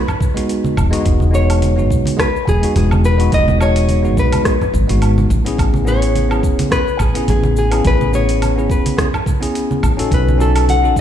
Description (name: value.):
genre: sunset chillout.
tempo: 106 BPM.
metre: 4/4.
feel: swing 55% on 16ths.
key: E major.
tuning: A4 = 437 Hz.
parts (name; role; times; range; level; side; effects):
nylon-string guitar; melody; 0.0-11.0 s; G#4 to F#5; -20 LUFS; left 3 dB; ping-pong delay.
smooth R&B drum kit; drums; 0.1-11.0 s; hi-hat, rim click, shaker, woodblock; -25 LUFS; right 1 dB; none.
congas; percussion; 0.1-10.8 s; none; -24 LUFS; right 2 dB; none.
electronic kick drum; drums; 0.2-11.0 s; none; -19 LUFS; equal; none.
bell-like tine electric piano; accompaniment; 0.3-11.0 s; G#3 to A4; -20 LUFS; moving between left 4 dB and right 5 dB; auto-pan, ping-pong delay.
woody fretless electric bass; bass; 0.8-11.0 s; E1 to B1; -15 LUFS; equal; none.
room: light reverb.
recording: played on a big sound system in a bare room, large studio reverb.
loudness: -12 LUFS.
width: side -10 dB against mid.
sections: 0.0-11.0 A section.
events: none.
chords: 0.0 Emaj7; 5.3 Amaj7; 10.1 B7.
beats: 0.50 | 1.06 1.63 2.19 2.76 | 3.33 3.89 4.46 5.02 | 5.59 6.16 6.72 7.29 | 7.86 8.42 8.99 9.55 | 10.12 10.69.